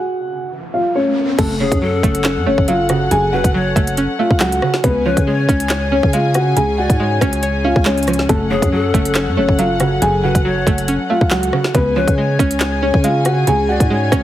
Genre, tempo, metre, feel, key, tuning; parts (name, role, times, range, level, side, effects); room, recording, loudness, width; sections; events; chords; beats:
hip hop, drill; 139 BPM; 4/4; half-time; F# harmonic minor; A4 = 439 Hz
dark concert grand piano; melody; 0.0-14.2 s; A3 to G#5; -18 LUFS; left 1 dB; low-pass filter
string-like resonator pluck; accompaniment; 0.0-14.2 s; F#2 to C#5; -21 LUFS; right 3 dB; chorus, low-pass filter
riser; sound effects; 0.3-1.4 s; -28 LUFS; equal
dark studio string section; sustained chords; 1.4-14.2 s; C#3 to G#5; -24 LUFS; left 2 dB
growling 808-style bass; bass; 1.4-14.2 s; F#1 to C#3; -20 LUFS; equal
drill drum kit; drums; 1.4-14.2 s; crash cymbal, handclaps, hi-hat, kick drum, rim click, snare drum; -18 LUFS; equal
breathy large pan pipes; second line; 1.6-14.2 s; G#4 to D5; -24 LUFS; left 4 dB; tape echo
light reverb, digital ambience; heavily compressed radio sound, multiband compression; -13 LUFS; side -13 dB against mid
0.0-1.4 A section; 1.4-14.2 B section
stop 0.0-1.4; riser 0.3-1.4
0.0 C#; 1.4 F#m; 4.8 C#; 8.3 F#m; 11.7 C#
0.09 0.52 0.95 | 1.39 1.82 2.25 2.68 | 3.11 3.54 3.98 4.41 | 4.84 5.27 5.70 6.13 | 6.57 7.00 7.43 7.86 | 8.29 8.72 9.16 9.59 | 10.02 10.45 10.88 11.31 | 11.75 12.18 12.61 13.04 | 13.47 13.90